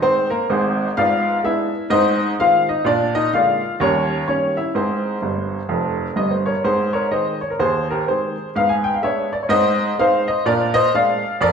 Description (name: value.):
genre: jazz, stride piano.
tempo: 126 BPM.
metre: 4/4.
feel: swing 61% on 8ths.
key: Ab major.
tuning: A4 = 440 Hz.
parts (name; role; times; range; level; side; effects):
clear upright piano; solo; 0.0-11.5 s; F1 to Ab5; -16 LUFS; equal; none.
room: wet recital hall reverb, RT60 1.4 s.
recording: recorded in a church or concert hall.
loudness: -16 LUFS.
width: side -6 dB against mid.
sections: 0.0-6.7 A section; 6.7-11.5 A section.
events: upright piano fill 5.2-6.7.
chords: 0.0 Ab; 1.0 Abdim7; 1.9 Ab; 2.9 Bb7; 3.8 Eb7b9; 4.8 Ab; 8.6 Abdim; 9.5 Ab; 10.5 Bb7.